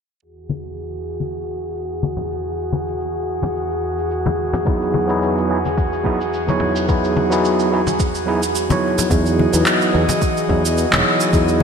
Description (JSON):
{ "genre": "sunset chillout", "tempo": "108 BPM", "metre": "4/4", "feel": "swing 54% on 16ths", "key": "E major", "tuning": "A4 = 438 Hz", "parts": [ { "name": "airy breathy pad", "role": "sustained chords", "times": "0.5-11.6 s", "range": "E2 to D#5", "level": "-22 LUFS", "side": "equal", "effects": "chorus, vintage 12-bit sampler grit" }, { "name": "electronic shaker and handclaps", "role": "drums", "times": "0.2-11.6 s", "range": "none", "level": "-22 LUFS", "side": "right 1 dB", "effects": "none" }, { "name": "congas", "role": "percussion", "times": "0.5-11.6 s", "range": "none", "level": "-24 LUFS", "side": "left 4 dB", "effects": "none" }, { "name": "overdriven tine electric piano", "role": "accompaniment", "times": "4.6-11.6 s", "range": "F#3 to C#5", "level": "-19 LUFS", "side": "right 1 dB", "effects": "auto-pan, low-pass filter, ping-pong delay" }, { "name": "electronic kick drum", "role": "drums", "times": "4.7-11.5 s", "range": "none", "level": "-20 LUFS", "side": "equal", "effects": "none" }, { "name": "sustaining fretless electric bass", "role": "bass", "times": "9.1-11.6 s", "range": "E1 to E2", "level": "-18 LUFS", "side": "equal", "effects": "lush chorus" } ], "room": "wet lush hall reverb, RT60 2.2 s", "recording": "bright 1980s-style digital production, low-pass filter", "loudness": "-16 LUFS", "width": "side -6 dB against mid", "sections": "0.2-9.1 A section; 9.1-11.6 B section", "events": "filter sweep 0.2-9.1; filter sweep on tine electric piano 9.1-11.6", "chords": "0.2 Emaj9" }